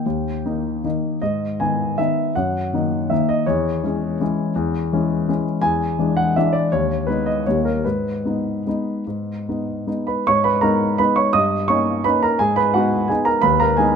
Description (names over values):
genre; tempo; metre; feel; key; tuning
classical, piano waltz; 143-181 BPM; 3/4; rubato; G# minor; A4 = 439 Hz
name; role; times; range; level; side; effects
warm grand piano; solo; 0.0-14.0 s; D#2 to D#6; -17 LUFS; equal; none
room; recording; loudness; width
moderate recital hall reverb, RT60 1.7 s; close, detailed microphones; -18 LUFS; side -6 dB against mid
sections
0.0-10.3 A section; 10.3-14.0 B section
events
none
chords
0.0 D#; 1.2 G#m; 2.4 D#m/F#; 3.5 C#m/E; 5.6 E7; 6.7 G#m/D#; 7.5 D#7; 7.8 G#m; 11.3 D#7/G; 12.4 G#m